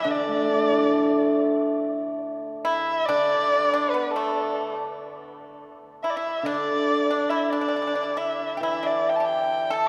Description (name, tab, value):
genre	chinese traditional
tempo	70 BPM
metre	2/4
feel	uneven beats, rubato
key	D zhi mode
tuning	A4 = 439 Hz
part	dark erhu	melody	0.0-9.9 s	A4 to A5	-28 LUFS	equal	none
part	pipa	second line	0.0-9.9 s	A3 to A4	-32 LUFS	equal	none
part	hammered dulcimer	accompaniment	0.0-9.9 s	D3 to A4	-28 LUFS	equal	none
room	wet cathedral reverb, RT60 4.9 s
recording	recorded in a church or concert hall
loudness	-24 LUFS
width	mono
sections	0.0-1.8 A section; 1.8-9.9 B section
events	none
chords	none